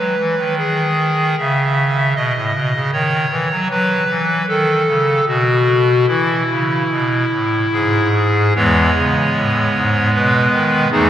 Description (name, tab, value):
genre	classical, chorale-style piece for pipe organ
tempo	76 BPM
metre	3/4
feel	straight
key	E major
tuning	A4 = 440 Hz
part	pipe organ, clarinet reed	solo	0.0-11.1 s	E2 to E5	-13 LUFS	equal	none
room	wet cathedral reverb, RT60 4.0 s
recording	vinyl crackle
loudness	-14 LUFS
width	side -10 dB against mid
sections	0.0-8.6 A section; 8.6-11.1 B section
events	none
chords	0.0 E; 1.4 A (rootless); 3.7 F#m; 5.3 N.C.; 6.1 E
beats	0.57 | 1.38 2.16 2.93 | 3.71 4.48 5.27 | 6.08 6.90 7.71 | 8.55 9.35 10.13 | 10.92